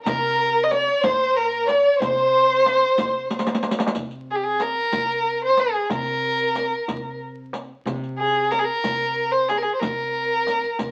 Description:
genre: Persian modal ensemble.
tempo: 61 BPM (dotted quarters).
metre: 6/8.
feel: straight.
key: unclear.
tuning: A4 = 441 Hz.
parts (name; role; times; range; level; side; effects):
warm studio violin section; second line; 0.0-3.6 s; Bb4 to Db5+45c; -25 LUFS; equal; none.
warm violin; melody; 0.1-10.9 s; G4 to Eb5; -22 LUFS; equal; none.
upright bass; bass; 0.1-10.9 s; Bb2 to C3; -38 LUFS; equal; none.
riq; percussion; 0.1-10.9 s; none; -30 LUFS; equal; none.
tombak; percussion; 0.1-10.9 s; none; -35 LUFS; equal; none.
room: moderate studio reverb, RT60 0.6 s.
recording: very old 78 rpm record, vinyl crackle.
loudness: -21 LUFS.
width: mono.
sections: 0.0-4.0 A section; 4.0-10.9 B section.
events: drum fill 3.3-4.0.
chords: none.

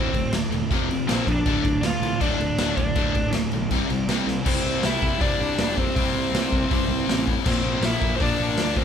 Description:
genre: punk rock.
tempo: 160 BPM.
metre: 4/4.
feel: straight.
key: unclear.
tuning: A4 = 441 Hz.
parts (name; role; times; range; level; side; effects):
high-gain lead guitar; melody; 0.0-8.8 s; C4 to F5; -26 LUFS; right 1 dB; distortion.
distorted electric guitar; riff; 0.0-8.8 s; D2 to C4; -26 LUFS; left 8 dB; overdrive.
sludgy distorted guitar; riff; 0.0-4.4 s; D2 to C4; -29 LUFS; right 9 dB; overdrive.
fuzz picked electric bass; bass; 0.0-8.8 s; D1 to D2; -29 LUFS; equal; overdrive.
raw garage drum kit; drums; 0.1-8.8 s; crash cymbal, hi-hat, kick drum, snare drum; -25 LUFS; equal; none.
room: light reverb.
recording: band playing live in one room.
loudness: -20 LUFS.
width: side -8 dB against mid.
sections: 0.0-4.5 A section; 4.5-8.8 B section.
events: drum fill 4.3.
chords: 0.0 D5; 0.7 F5; 1.1 Bb5; 1.5 Dm; 3.7 C5; 4.5 C; 7.5 Bb.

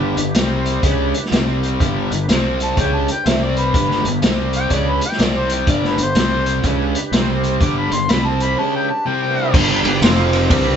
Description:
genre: blues rock power trio and southern rock.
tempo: 124 BPM.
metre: 4/4.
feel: swing 64% on 8ths.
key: G mixolydian.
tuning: A4 = 440 Hz.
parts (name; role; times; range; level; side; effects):
tonewheel organ; sustained chords; 0.0-10.8 s; G3 to C5; -27 LUFS; right 4 dB; slow rotary speaker, overdrive, chorus vibrato.
overdriven electric guitar; riff; 0.0-10.8 s; F2 to C#4; -20 LUFS; left 1 dB; none.
fuzz fingered electric bass; bass; 0.0-10.8 s; F1 to C#2; -22 LUFS; equal; overdrive.
vintage drum kit; drums; 0.2-10.6 s; crash cymbal, hi-hat, kick drum, ride cymbal, snare drum; -18 LUFS; equal; none.
overdriven harmonica; melody; 2.6-9.5 s; B4 to D6; -21 LUFS; left 1 dB; none.
room: moderate studio reverb, RT60 0.5 s.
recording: band playing live in one room, nothing above 7.9 kHz.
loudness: -15 LUFS.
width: side -8 dB against mid.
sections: 0.0-9.5 A section; 9.5-10.8 B section.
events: none.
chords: 0.3 C5; 0.8 G; 1.3 C5; 1.8 G; 2.3 C5; 2.8 G; 3.3 C5; 3.7 G; 4.2 C5; 4.7 G; 5.2 C5; 5.7 G; 6.2 C5; 6.6 G; 7.1 C5; 7.6 G; 8.1 C5; 8.6 G; 9.1 C5; 9.5 G; 10.0 F5.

